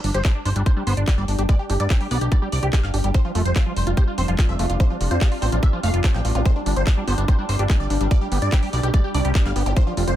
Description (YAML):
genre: psychedelic trance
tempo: 145 BPM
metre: 4/4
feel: straight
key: unclear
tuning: A4 = 441 Hz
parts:
  - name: supersaw stab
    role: melody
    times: 0.0-10.1 s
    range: D4 to G5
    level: -28 LUFS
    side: equal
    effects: phaser, cassette tape, sidechain pumping, ping-pong delay
  - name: evolving wavetable pad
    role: sustained chords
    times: 0.0-10.2 s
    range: G3 to D4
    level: -31 LUFS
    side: right 2 dB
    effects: phaser, built-in reverb, sidechain pumping
  - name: fat analog bass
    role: bass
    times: 0.0-10.1 s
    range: F1 to G2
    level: -22 LUFS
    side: equal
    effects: none
  - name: garage drum kit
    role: drums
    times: 0.0-10.2 s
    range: handclaps, hi-hat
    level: -31 LUFS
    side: equal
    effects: none
  - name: ethereal airy pad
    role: texture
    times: 0.1-10.2 s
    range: C4 to G5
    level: -32 LUFS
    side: left 2 dB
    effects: ensemble chorus, built-in reverb, sidechain pumping
  - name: overdriven acid bass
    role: riff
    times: 0.1-10.1 s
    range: F3 to G4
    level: -30 LUFS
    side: right 1 dB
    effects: distortion, auto-pan, sidechain pumping, digital delay
  - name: electronic kick drum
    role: drums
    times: 0.2-9.8 s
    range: none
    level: -18 LUFS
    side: equal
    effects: none
  - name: zap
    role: sound effects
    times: 6.4-6.5, 9.7-9.8 s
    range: none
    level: -35 LUFS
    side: right 1 dB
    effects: none
room: digital ambience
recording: none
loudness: -18 LUFS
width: side -12 dB against mid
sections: 0.0-10.2 A section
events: none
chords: 0.0 G5; 3.1 F5; 6.5 G5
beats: 0.25 0.66 1.07 | 1.49 1.90 2.32 2.73 | 3.14 3.56 3.97 4.39 | 4.80 5.21 5.63 6.04 | 6.46 6.87 7.28 7.70 | 8.11 8.52 8.94 9.35 | 9.77